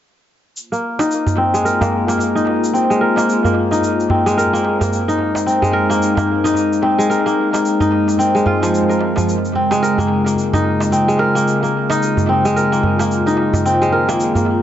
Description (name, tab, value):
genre	organic downtempo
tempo	110 BPM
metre	4/4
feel	swing 59% on 16ths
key	Bb minor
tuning	A4 = 440 Hz
part	warbly tape-like pad	sustained chords	1.1-14.6 s	Db3 to C5	-19 LUFS	left 2 dB	chorus, built-in reverb
part	shaker	drums	0.6-14.4 s	none	-31 LUFS	equal	none
part	kora	arpeggios	0.7-14.6 s	F3 to Bb4	-16 LUFS	equal	low-pass filter, dub echo
part	darbuka	percussion	1.0-14.4 s	none	-22 LUFS	right 2 dB	tape echo
room	moderate spring reverb, RT60 1.3 s, studio reverb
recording	echo-heavy mix, nothing above 7.8 kHz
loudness	-14 LUFS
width	side -10 dB against mid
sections	0.6-14.6 A section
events	none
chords	0.6 Bbsus2; 4.9 Ab; 9.3 Dbmaj7; 13.6 Ebsus24